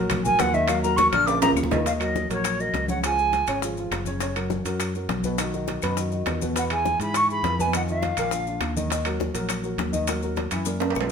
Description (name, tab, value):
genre	Afro-Cuban jazz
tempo	205 BPM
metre	4/4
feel	straight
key	Eb minor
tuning	A4 = 440 Hz
part	warm baby grand piano	accompaniment	0.0-11.1 s	Bb2 to Fb5	-29 LUFS	equal	none
part	fingered electric bass	bass	0.0-11.1 s	Gb1 to G#2	-29 LUFS	equal	none
part	bongos	percussion	0.1-11.0 s	none	-33 LUFS	left 6 dB	none
part	claves	percussion	0.1-11.1 s	none	-38 LUFS	left 7 dB	none
part	congas	percussion	0.1-11.1 s	none	-34 LUFS	left 2 dB	none
part	maracas	percussion	0.1-11.1 s	none	-37 LUFS	left 7 dB	none
part	timbales	percussion	0.1-11.1 s	none	-30 LUFS	right 6 dB	none
part	silver concert flute	melody	0.3-3.6, 6.6-8.7 s	Db5 to F6	-23 LUFS	equal	none
room	moderate studio reverb, RT60 0.8 s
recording	minimal, uncompressed stereo recording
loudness	-22 LUFS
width	side -6 dB against mid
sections	0.0-1.9 A section; 1.9-11.1 B section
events	flute solo 0.0-1.9; drum fill 1.1-1.9, 10.1-11.1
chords	0.0 Ebm; 1.3 Bb5; 1.9 Ebm7; 3.0 Db; 4.2 Gb; 5.4 B; 6.6 E; 7.7 Ebsus2; 8.3 Bb; 8.9 Ebm